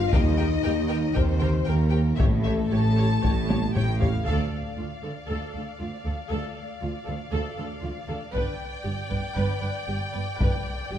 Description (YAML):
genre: cinematic, epic orchestral film score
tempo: 117 BPM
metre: 4/4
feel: straight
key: D dorian from 4.3 s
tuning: A4 = 440 Hz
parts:
  - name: warm symphonic violin section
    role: second line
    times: 0.0-11.0 s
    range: A4 to F5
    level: -37 LUFS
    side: left 5 dB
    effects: none
  - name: mellow French horn section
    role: sustained chords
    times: 0.0-10.6 s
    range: A3 to F4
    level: -30 LUFS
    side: left 6 dB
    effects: none
  - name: mellow tuba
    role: bass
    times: 0.0-4.2 s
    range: A1 to Eb2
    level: -31 LUFS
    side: right 3 dB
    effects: none
  - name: rich symphonic cello section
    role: bass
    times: 0.0-11.0 s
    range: D2 to A2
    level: -30 LUFS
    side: right 2 dB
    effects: none
  - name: rich symphonic double bass section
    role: bass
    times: 0.0-11.0 s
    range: G1 to Eb2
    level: -29 LUFS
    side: right 2 dB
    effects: none
  - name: warm symphonic violin section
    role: melody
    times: 0.1-11.0 s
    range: E5 to A5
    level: -36 LUFS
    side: left 4 dB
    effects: none
  - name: rich symphonic viola section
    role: accompaniment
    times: 0.1-11.0 s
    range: F4 to C#5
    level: -35 LUFS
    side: right 1 dB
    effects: none
  - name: solo taiko drums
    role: drums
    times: 0.1-5.3, 8.4-10.9 s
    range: none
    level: -26 LUFS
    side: left 1 dB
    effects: none
  - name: reverse cymbal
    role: sound effects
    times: 10.4-11.0 s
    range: none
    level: barely audible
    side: none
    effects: none
room: moderate scoring stage reverb, RT60 1.8 s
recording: none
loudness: -23 LUFS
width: side -10 dB against mid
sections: 0.0-4.3 A section; 4.3-11.0 B section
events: drum fill 3.5-4.3; band accent 4.3-4.8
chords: 0.1 Eb; 2.2 A7; 4.3 Dm; 8.3 G